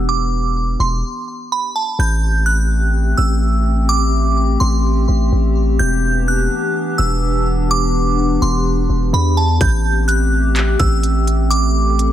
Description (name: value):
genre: hip hop, atmospheric cloud-rap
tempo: 126 BPM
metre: 4/4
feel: half-time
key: A dorian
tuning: A4 = 440 Hz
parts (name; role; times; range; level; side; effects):
- glassy synth bell; melody; 0.0-12.1 s; A5 to G6; -21 LUFS; right 2 dB; chorus, low-pass filter, digital delay
- warbly tape-like pad; sustained chords; 0.0-12.1 s; E3 to A4; -21 LUFS; left 2 dB; chorus, built-in reverb, sidechain pumping, low-pass filter
- long sustained 808-style bass; bass; 0.0-12.1 s; E1 to E2; -16 LUFS; equal; none
- trap drum kit; drums; 9.6-12.1 s; handclaps, hi-hat, kick drum; -19 LUFS; equal; none
room: digital ambience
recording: none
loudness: -14 LUFS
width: side -11 dB against mid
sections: 0.0-2.0 A section; 2.0-12.1 B section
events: filter sweep 0.0-2.0; stop 1.0-2.0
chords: 0.0 Em7; 2.0 Am7; 5.8 Em7; 9.6 Am7